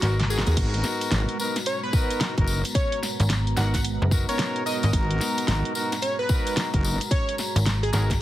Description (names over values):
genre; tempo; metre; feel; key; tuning
glitch hop; 110 BPM; 4/4; swing 63% on 16ths; G# minor; A4 = 441 Hz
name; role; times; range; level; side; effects
plucky unison lead; melody; 0.0-8.0 s; F#4 to F#5; -30 LUFS; right 1 dB; cassette tape, digital delay
dark analog pad; sustained chords; 0.0-8.2 s; G#3 to A#5; -33 LUFS; right 1 dB; chorus, phaser, sidechain pumping
clear horn section; stabs; 0.0-8.1 s; B3 to A#4; -31 LUFS; left 1 dB; vintage 12-bit sampler grit, sidechain pumping, digital delay
slap-like FM bass; bass; 0.0-8.2 s; F#1 to G#1; -23 LUFS; equal; none
pop drum kit; drums; 0.0-8.2 s; crash cymbal, hi-hat, snare drum; -29 LUFS; equal; none
tambourine; percussion; 0.0-8.2 s; none; -34 LUFS; left 4 dB; none
wobble bass; bass; 0.5-7.0 s; F#1 to D#2; -24 LUFS; equal; chorus, tube saturation
electronic kick drum; drums; 0.6-8.2 s; none; -24 LUFS; equal; none
room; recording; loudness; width
light reverb; heavily compressed radio sound, multiband compression; -22 LUFS; side -14 dB against mid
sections
0.0-8.2 A section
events
break 0.0-0.6; drum fill 0.0-0.6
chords
0.0 G#m9